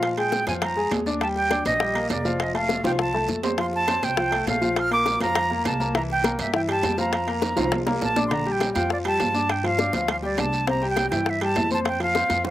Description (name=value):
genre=latin, salsa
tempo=203 BPM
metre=4/4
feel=straight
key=Bb major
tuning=A4 = 440 Hz
part: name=bright concert flute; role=melody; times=0.0-12.5 s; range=D5 to F6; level=-25 LUFS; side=right 2 dB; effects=slapback echo
part: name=warm upright piano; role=accompaniment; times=0.0-12.5 s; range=C3 to D6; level=-26 LUFS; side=left 2 dB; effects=slapback echo
part: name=upright bass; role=bass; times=0.0-12.5 s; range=F1 to Bb2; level=-32 LUFS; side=equal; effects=none
part: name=bongos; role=percussion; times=0.0-12.5 s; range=none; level=-28 LUFS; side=left 7 dB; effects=slapback echo
part: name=congas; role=percussion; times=0.0-12.5 s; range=none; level=-32 LUFS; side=equal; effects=slapback echo
part: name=guiro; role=percussion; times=0.0-12.5 s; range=none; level=-38 LUFS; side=right 5 dB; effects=none
part: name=timbales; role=percussion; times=0.0-12.5 s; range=none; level=-32 LUFS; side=right 6 dB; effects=none
room=little or no reverb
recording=recorded outdoors, with no room sound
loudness=-21 LUFS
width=side -13 dB against mid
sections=0.0-8.3 A section; 8.3-12.5 B section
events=drum fill 2.8-3.6, 7.4-8.3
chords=0.0 Bb7; 1.2 Ebmaj9; 2.4 F; 4.8 Bb; 6.0 C7; 7.1 Fsus4; 8.3 Bb6; 9.5 G5; 10.7 C; 11.9 F5